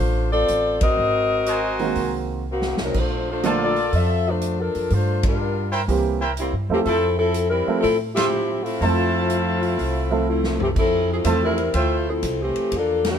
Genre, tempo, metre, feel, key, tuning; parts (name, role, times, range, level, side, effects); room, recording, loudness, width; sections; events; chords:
jazz, big band swing; 123 BPM; 4/4; swing 67% on 8ths; F major; A4 = 445 Hz
mellow saxophone section; melody; 0.0-13.2 s; Eb3 to E5; -21 LUFS; left 2 dB
upright bass; bass; 0.0-13.2 s; Ab1 to A2; -25 LUFS; equal
swinging big-band drum kit; drums; 0.5-13.1 s; crash cymbal, hi-hat, kick drum, ride cymbal, snare drum, toms; -27 LUFS; equal
bright trumpet section; stabs; 1.5-12.0 s; E4 to C6; -26 LUFS; right 2 dB
warm upright piano; accompaniment; 1.8-11.6 s; D3 to E5; -24 LUFS; right 4 dB
light reverb; minimal, uncompressed stereo recording; -19 LUFS; side -8 dB against mid
0.0-10.8 A section; 10.8-13.2 A section
band accent 0.7, 5.1, 8.1, 13.0; drum fill 2.5-2.9, 10.3-10.8
0.0 Dm7; 1.0 Ab9; 2.9 Bbmaj7; 4.9 Gm7; 5.9 C7; 6.9 Fmaj7